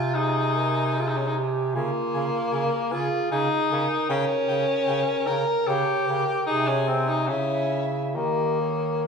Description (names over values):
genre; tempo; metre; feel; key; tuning
classical, lyrical piece for single-reed quartet; 75 BPM; 3/4; rubato; Ab major; A4 = 440 Hz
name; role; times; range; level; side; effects
warm soprano saxophone; melody; 0.0-9.1 s; Db5 to Ab5; -35 LUFS; left 7 dB; none
warm tenor saxophone; accompaniment; 0.0-9.0 s; Bb3 to Bb4; -25 LUFS; left 2 dB; none
clear bass clarinet; bass; 0.0-9.1 s; C3 to Eb3; -28 LUFS; right 1 dB; none
warm alto saxophone; second line; 0.2-9.1 s; Fb4 to Db5; -30 LUFS; right 5 dB; none
room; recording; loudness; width
wet scoring stage reverb, RT60 2.0 s; small room reverb; -22 LUFS; side -5 dB against mid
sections
0.0-9.1 A section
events
none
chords
0.0 Ab/C; 1.7 Bbm7/Db; 4.1 Gdim/Db; 6.5 Ab/C; 7.3 Dbm; 8.2 Eb